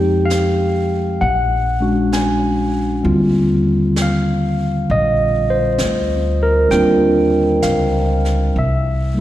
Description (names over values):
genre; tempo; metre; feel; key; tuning
jazz; 65 BPM; 4/4; swing 66% on 8ths; Eb major; A4 = 439 Hz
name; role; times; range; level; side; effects
barky tine electric piano; accompaniment; 0.0-9.2 s; D3 to Ab5; -15 LUFS; equal; phaser, slapback echo
upright bass; bass; 0.0-9.2 s; Bb1 to F2; -20 LUFS; equal; none
jazz brush drum kit; drums; 0.3-9.2 s; brushed snare drum, hi-hat, snare drum; -29 LUFS; right 2 dB; none
room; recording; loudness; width
moderate lush hall reverb, RT60 2.2 s; live gig heard through the venue's PA, recital hall reverb; -14 LUFS; side -13 dB against mid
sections
0.0-9.2 A section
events
none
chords
0.0 Fm7; 1.2 Bb7alt; 3.0 Ebmaj13; 8.6 C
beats
0.30 1.21 2.13 | 3.05 3.96 4.88 5.79 | 6.71 7.63 8.56